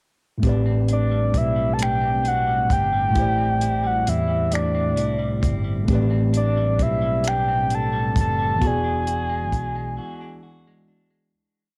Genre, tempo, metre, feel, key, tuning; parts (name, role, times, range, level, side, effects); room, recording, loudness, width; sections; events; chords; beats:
slow six-eight R&B; 44 BPM (dotted quarters); 6/8; straight; A dorian; A4 = 440 Hz
electric guitar at the edge of break-up; second line; 0.4-11.8 s; A2 to F#4; -33 LUFS; equal; harmonic tremolo
tine electric piano; accompaniment; 0.4-11.4 s; A2 to D5; -27 LUFS; equal; overdrive
fretless electric bass; bass; 0.4-10.0 s; E1 to E2; -28 LUFS; equal; tube saturation
compact cocktail drum kit; drums; 0.4-9.7 s; finger snaps, hi-hat, kick drum; -27 LUFS; equal
soft octave-layered synth lead; melody; 0.9-10.9 s; D5 to A5; -26 LUFS; equal; chorus, cassette tape
light reverb, small room ambience; home recording on cassette; -21 LUFS; mono
0.4-11.3 verse
fade-out 8.6-11.3; break 10.0-11.3
0.4 Am11; 3.2 D9sus4/A; 5.9 Am11; 8.6 E9
| 0.43 1.79 | 3.16 4.52 | 5.88 7.25 | 8.61 9.97